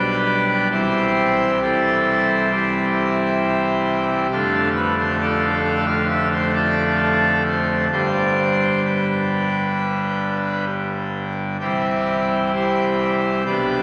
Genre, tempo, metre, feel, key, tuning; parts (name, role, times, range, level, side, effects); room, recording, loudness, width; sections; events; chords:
classical, chorale-style piece for pipe organ; 66 BPM; 4/4; straight; C major; A4 = 438 Hz
pipe organ, full organ; solo; 0.0-13.8 s; F1 to F5; -20 LUFS; equal
wet cathedral reverb, RT60 4.3 s; vinyl crackle; -20 LUFS; mono
0.0-13.8 A section
0.0 G/B; 0.7 C; 4.3 Dm/F; 7.9 G; 11.6 C